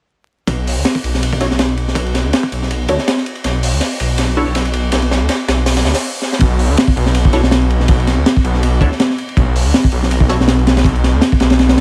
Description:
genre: drum and bass, jungle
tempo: 162 BPM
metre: 4/4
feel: swing 54% on 16ths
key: B minor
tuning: A4 = 439 Hz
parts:
  - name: detuned saw bass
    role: bass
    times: 0.5-11.8 s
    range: B1 to D2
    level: -18 LUFS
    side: equal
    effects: none
  - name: crunchy breakbeat drum kit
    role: drums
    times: 0.5-11.8 s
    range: hi-hat, kick drum, ride cymbal, snare drum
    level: -17 LUFS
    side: equal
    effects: high-pass filter on kick, high-pass filter on cymbals, high-pass filter on hats, high-pass filter on snare, high-pass filter on room
  - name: filtered dub chord stab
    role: stabs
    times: 1.4-4.4, 7.3-10.4 s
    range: D4 to C#5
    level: -25 LUFS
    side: equal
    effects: phaser, dub echo
room: small room ambience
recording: vinyl crackle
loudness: -15 LUFS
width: mono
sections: 0.5-6.4 A section; 6.4-11.8 B section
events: build-up 0.5-6.4; filter sweep on synth stab 0.5-6.4; drum fill 3.4-6.0, 6.2; stop 6.0-6.4; drop 6.4-11.8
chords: 0.5 Bm

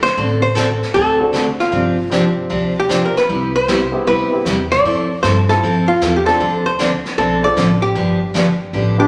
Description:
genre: country, western swing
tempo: 154 BPM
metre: 4/4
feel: swing 66% on 8ths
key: unclear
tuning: A4 = 438 Hz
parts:
  - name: archtop guitar, miked and amplified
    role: melody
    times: 0.0-9.1 s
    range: F4 to D5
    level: -20 LUFS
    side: equal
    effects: none
  - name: jazz brush drum kit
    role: drums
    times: 0.0-9.1 s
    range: brushed snare drum, hi-hat, snare drum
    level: -28 LUFS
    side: equal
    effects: none
  - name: picked steel-string acoustic guitar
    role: accompaniment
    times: 0.2-9.0 s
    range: C3 to A4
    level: -20 LUFS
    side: equal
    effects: none
  - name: upright bass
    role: bass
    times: 0.2-9.1 s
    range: G1 to G2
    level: -25 LUFS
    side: equal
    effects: none
  - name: dark upright piano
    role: accompaniment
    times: 1.2-9.1 s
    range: B3 to A4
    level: -25 LUFS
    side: equal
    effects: none
  - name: mellow clarinet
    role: second line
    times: 9.0-9.1 s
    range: D4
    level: -15 LUFS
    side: equal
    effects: none
room: wet large studio reverb, RT60 1.4 s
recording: none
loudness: -16 LUFS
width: mono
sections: 0.0-9.1 A section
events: none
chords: 0.2 D7/A; 1.7 G7sus4; 3.3 Cmaj7; 4.8 Fmaj7; 6.4 Dm7; 8.0 G7

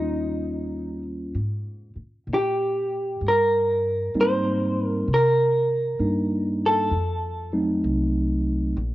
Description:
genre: jazz ballad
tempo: 65 BPM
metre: 4/4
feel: swing 66% on 8ths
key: unclear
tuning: A4 = 440 Hz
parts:
  - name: vintage hollow-body jazz guitar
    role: melody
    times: 0.0-7.5 s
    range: Eb4 to C5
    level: -22 LUFS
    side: equal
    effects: cassette tape
  - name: mellow tine electric piano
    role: accompaniment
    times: 0.0-8.8 s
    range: Gb3 to F4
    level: -25 LUFS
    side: equal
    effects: medium stereo tremolo, cassette tape
  - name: upright bass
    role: bass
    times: 0.0-8.9 s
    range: Bb1 to C3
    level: -28 LUFS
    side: equal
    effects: none
room: light reverb, studio reverb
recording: home recording on cassette, nothing above 7.6 kHz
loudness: -21 LUFS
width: side -16 dB against mid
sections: 0.0-1.4 A section; 1.4-8.9 B section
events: none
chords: 0.0 Eb7; 1.4 Abmaj9; 5.1 Cm7; 6.9 F7b9

